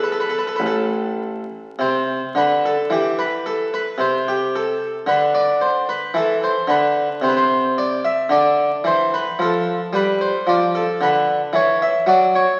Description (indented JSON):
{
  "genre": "classical, baroque-style suite movement for harpsichord",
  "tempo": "56 BPM",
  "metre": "3/4",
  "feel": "rubato",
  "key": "C major",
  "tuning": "A4 = 440 Hz",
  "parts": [
    { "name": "harpsichord", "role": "solo", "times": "0.0-12.6 s", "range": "A1 to E5", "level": "-19 LUFS", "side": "equal", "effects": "none" }
  ],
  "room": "wet scoring stage reverb, RT60 1.9 s",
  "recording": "very old 78 rpm record, vinyl crackle",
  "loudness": "-19 LUFS",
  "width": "mono",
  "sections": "0.0-1.8 A section; 1.8-12.6 A section",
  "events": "none",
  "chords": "0.0 A5; 1.8 C; 5.1 Cmaj13/D; 7.2 N.C.; 8.3 Dm; 11.5 E7sus2",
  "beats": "0.62 | 1.80 2.91 3.99 | 5.07 6.14 7.22 | 8.30 9.39 10.47 | 11.53 12.58"
}